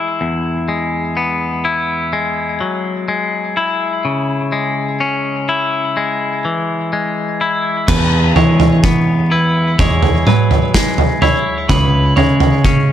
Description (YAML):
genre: post-rock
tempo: 63 BPM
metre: 4/4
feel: straight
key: E major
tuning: A4 = 440 Hz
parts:
  - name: clean electric guitar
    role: arpeggios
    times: 0.0-12.9 s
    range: E2 to E4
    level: -17 LUFS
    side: left 3 dB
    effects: digital delay
  - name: electric guitar at the edge of break-up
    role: arpeggios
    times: 7.9-12.9 s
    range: B4 to C#5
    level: -21 LUFS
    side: right 3 dB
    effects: digital delay
  - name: growling picked electric bass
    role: bass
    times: 7.9-12.9 s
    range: C#2 to E3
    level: -14 LUFS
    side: equal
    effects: overdrive
  - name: loose indie drum kit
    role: drums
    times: 7.9-12.9 s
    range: crash cymbal, kick drum, snare drum, toms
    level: -14 LUFS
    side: right 1 dB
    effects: none
room: moderate concert hall reverb, RT60 2.0 s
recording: none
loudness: -13 LUFS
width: side -10 dB against mid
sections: 0.0-7.9 A section; 7.9-12.9 A section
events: none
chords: 0.2 Eadd9; 4.0 C#m; 7.9 Eadd9; 11.7 C#m